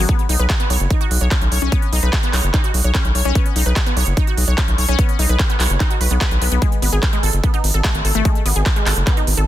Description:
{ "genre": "psychedelic trance", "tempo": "147 BPM", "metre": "4/4", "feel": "straight", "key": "unclear", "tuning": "A4 = 440 Hz", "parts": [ { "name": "wide unison pluck", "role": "riff", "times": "0.0-9.4 s", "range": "G#3 to C#5", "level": "-23 LUFS", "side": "moving between left 8 dB and right 6 dB", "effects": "auto-pan, vintage 12-bit sampler grit, sidechain pumping, ping-pong delay" }, { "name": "round analog bass", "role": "bass", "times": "0.0-9.4 s", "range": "F#1 to B1", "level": "-17 LUFS", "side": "equal", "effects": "none" }, { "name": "big-room dance drum kit", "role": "drums", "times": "0.1-9.5 s", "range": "handclaps, hi-hat", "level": "-22 LUFS", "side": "right 1 dB", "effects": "overdrive" }, { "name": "electronic kick drum", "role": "drums", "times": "0.1-9.2 s", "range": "none", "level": "-17 LUFS", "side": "equal", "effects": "none" } ], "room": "digital ambience", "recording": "dense, heavily limited modern master", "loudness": "-14 LUFS", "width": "side -13 dB against mid", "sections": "0.0-9.5 A section", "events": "none", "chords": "0.1 B5; 6.6 G#5" }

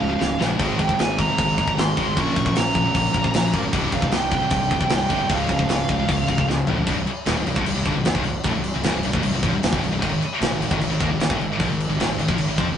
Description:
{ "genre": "heavy metal", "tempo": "153 BPM", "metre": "4/4", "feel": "straight", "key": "C phrygian", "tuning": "A4 = 438 Hz", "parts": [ { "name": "high-gain lead guitar", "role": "melody", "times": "0.0-6.5 s", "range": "F5 to Db6", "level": "-24 LUFS", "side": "right 3 dB", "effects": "distortion" }, { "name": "fuzz guitar", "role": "riff", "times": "0.0-12.8 s", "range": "C2 to Bb4", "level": "-26 LUFS", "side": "equal", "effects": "distortion" }, { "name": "heavy high-gain guitar", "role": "riff", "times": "0.0-12.8 s", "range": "C2 to C4", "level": "-27 LUFS", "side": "left 4 dB", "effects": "distortion" }, { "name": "heavy high-gain guitar", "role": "riff", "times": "0.0-12.8 s", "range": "C2 to C4", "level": "-30 LUFS", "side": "right 3 dB", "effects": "distortion" }, { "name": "fuzz fingered electric bass", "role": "bass", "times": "0.0-12.8 s", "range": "C1 to F2", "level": "-28 LUFS", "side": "equal", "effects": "overdrive" }, { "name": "tight metal drum kit", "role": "drums", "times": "0.2-12.7 s", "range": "crash cymbal, kick drum, snare drum, toms", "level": "-23 LUFS", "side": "equal", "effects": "none" } ], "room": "moderate studio reverb, RT60 0.6 s", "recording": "rough rehearsal-room recording, tube saturation, nothing above 10.4 kHz", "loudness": "-19 LUFS", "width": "side -9 dB against mid", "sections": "0.0-6.9 A section; 6.9-12.8 B section", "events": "drum fill 0.0-0.6, 6.5-6.9", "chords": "0.0 Db; 0.6 Ab; 2.2 Bbm; 3.7 Cm; 5.3 Db; 6.9 Cm; 10.0 Ab5" }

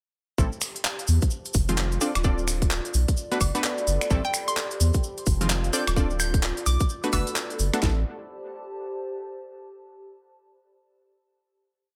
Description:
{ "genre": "UK garage, two-step garage", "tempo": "129 BPM", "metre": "4/4", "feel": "swing 61% on 16ths", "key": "A minor", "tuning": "A4 = 440 Hz", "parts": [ { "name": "punchy chord stab", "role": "stabs", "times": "0.4-8.0 s", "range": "Eb3 to D5", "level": "-32 LUFS", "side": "equal", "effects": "chorus" }, { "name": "soft dub sub bass", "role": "bass", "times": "0.4-8.0 s", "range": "D1 to E2", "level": "-27 LUFS", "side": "equal", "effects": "none" }, { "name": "garage drum kit", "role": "drums", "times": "0.4-8.0 s", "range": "handclaps, kick drum, snare drum", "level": "-27 LUFS", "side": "equal", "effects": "none" }, { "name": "cabasa", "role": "percussion", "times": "0.4-7.8 s", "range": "none", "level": "-36 LUFS", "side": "equal", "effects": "none" }, { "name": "warbly tape-like pad", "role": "texture", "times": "0.8-9.6 s", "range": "F4 to B5", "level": "-38 LUFS", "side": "equal", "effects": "chorus, built-in reverb, phaser, sidechain pumping" }, { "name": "garage drum kit", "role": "drums", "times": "0.6-7.8 s", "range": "finger snaps, handclaps, hi-hat, woodblock", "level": "-32 LUFS", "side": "equal", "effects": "none" }, { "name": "hollow square pluck", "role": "melody", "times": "4.2-7.6 s", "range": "G5 to G6", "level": "-34 LUFS", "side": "equal", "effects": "chorus, dub echo" } ], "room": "light reverb, digital ambience", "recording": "none", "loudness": "-25 LUFS", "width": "mono", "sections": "0.4-7.8 drop; 7.8-9.7 final chord", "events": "drop 0.4-7.8", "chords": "0.4 Am7; 1.3 Fm7; 2.0 Dm7; 2.9 Bm7; 4.1 Am7; 5.0 Fm7; 5.7 Dm7; 6.7 Bm7; 7.8 Am7" }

